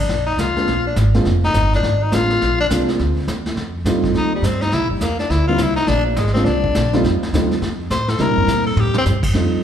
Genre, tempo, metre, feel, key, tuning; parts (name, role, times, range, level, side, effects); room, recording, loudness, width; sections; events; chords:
jazz, small-group swing and bop; 208 BPM; 4/4; swing 63% on 8ths; A4 = 439 Hz
growling tenor saxophone; melody; 0.0-9.0 s; F3 to C5; -20 LUFS; left 3 dB
upright bass; bass; 0.0-9.6 s; F1 to C3; -19 LUFS; equal
vintage brush drum kit; drums; 0.1-9.6 s; brushed snare drum, crash cymbal, hi-hat, kick drum, snare drum, toms; -24 LUFS; left 1 dB
dark baby grand piano; accompaniment; 0.6-9.6 s; G3 to F4; -21 LUFS; right 1 dB
wet large studio reverb, RT60 1.3 s; heard from further back in the room; -15 LUFS; side -9 dB against mid
0.0-9.3 A section
tenor saxophone solo 0.0-9.3; drum fill 8.5-9.1
0.1 Bb9; 3.6 F9; 4.7 C9; 5.9 Bb9; 7.0 F9; 8.2 C9